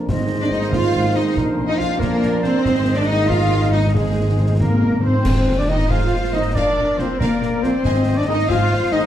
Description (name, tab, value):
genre	cinematic, heroic adventure film score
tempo	93 BPM (dotted quarters)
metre	6/8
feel	straight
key	Ab lydian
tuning	A4 = 440 Hz
part	clear trombone section	sustained chords	0.0-9.0 s	F2 to C4	-27 LUFS	right 2 dB	none
part	mellow French horn section	sustained chords	0.0-9.1 s	Ab3 to F4	-25 LUFS	left 4 dB	none
part	dark trumpet	stabs	0.0-9.1 s	Bb4 to F5	-27 LUFS	right 1 dB	none
part	flute section	second line	0.1-9.1 s	Bb4 to F5	-31 LUFS	right 1 dB	none
part	warm symphonic double bass section	bass	0.1-9.0 s	Ab1 to Bb1	-23 LUFS	right 1 dB	none
part	concert snare drum, clash cymbals and concert bass drum	drums	0.1-9.1 s	none	-27 LUFS	equal	none
part	timpani	percussion	0.1-8.5 s	Ab2	-24 LUFS	left 1 dB	none
part	warm symphonic violin section	melody	0.4-9.0 s	Ab4 to F5	-29 LUFS	left 4 dB	none
part	clear clarinet	second line	0.4-9.1 s	Ab4 to F5	-29 LUFS	left 2 dB	none
part	rich symphonic violin section	second line	0.4-9.0 s	C4 to Ab5	-33 LUFS	left 2 dB	none
part	warm symphonic viola section	accompaniment	0.4-9.1 s	Ab3 to F4	-27 LUFS	right 2 dB	none
part	rich symphonic cello section	bass	0.4-9.1 s	Ab3 to F4	-24 LUFS	right 2 dB	none
part	clear oboe	second line	4.6-9.0 s	Bb4 to F5	-33 LUFS	right 1 dB	none
part	clash cymbals and concert bass drum	percussion	5.2-6.1 s	none	-25 LUFS	equal	none
room	wet recital hall reverb, RT60 1.3 s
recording	dark, warm production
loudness	-16 LUFS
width	side -11 dB against mid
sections	0.0-5.3 A section; 5.3-9.1 B section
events	timpani fill 2.6-5.3; band accent 5.3-5.7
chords	0.1 Ab; 1.4 Bb; 2.6 Ab; 6.6 Bb; 7.9 Ab